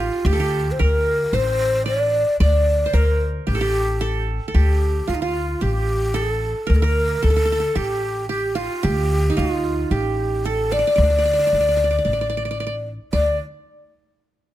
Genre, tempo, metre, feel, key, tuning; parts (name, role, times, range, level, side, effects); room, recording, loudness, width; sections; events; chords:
Arabic maqam ensemble; 112 BPM; 4/4; straight; D maqam kurd; A4 = 440 Hz
breathy mellow ney; melody; 0.0-13.4 s; Eb4 to D5; -21 LUFS; equal
qanun; second line; 0.0-13.4 s; Eb4 to D5; -27 LUFS; right 4 dB
upright bass; bass; 0.0-13.4 s; A1 to D2; -21 LUFS; equal
little or no reverb; close, detailed microphones; -18 LUFS; side -14 dB against mid
0.0-13.1 A section; 13.1-14.5 B section